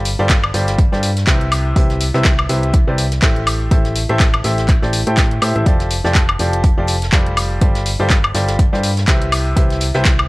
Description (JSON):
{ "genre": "piano house", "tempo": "123 BPM", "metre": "4/4", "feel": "swing 57% on 16ths", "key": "G mixolydian", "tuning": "A4 = 440 Hz", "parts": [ { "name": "clear upright piano", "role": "riff", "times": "0.0-10.1 s", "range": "C3 to G5", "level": "-20 LUFS", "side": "equal", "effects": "sidechain pumping, analog delay" }, { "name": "solid FM bass", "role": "bass", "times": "0.0-10.3 s", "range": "F1 to A2", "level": "-19 LUFS", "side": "equal", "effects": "sidechain pumping" }, { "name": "jazz brush drum kit", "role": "drums", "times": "0.0-10.2 s", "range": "hi-hat, snare drum", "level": "-31 LUFS", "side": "right 1 dB", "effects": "none" }, { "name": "house drum kit", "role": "drums", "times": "0.1-10.3 s", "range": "handclaps, hi-hat, woodblock", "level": "-20 LUFS", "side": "left 1 dB", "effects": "none" }, { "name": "electronic kick drum", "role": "drums", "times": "0.3-10.2 s", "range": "none", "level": "-14 LUFS", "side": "equal", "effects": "overdrive" } ], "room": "small room reverb", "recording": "dry, gritty hardware recording, cassette tape", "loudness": "-13 LUFS", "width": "side -22 dB against mid", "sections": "0.0-10.3 A section", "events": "none", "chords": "0.0 G9sus4; 1.5 Cmaj7; 3.5 Am7; 5.7 F69; 7.4 G9sus4; 9.3 Cmaj7" }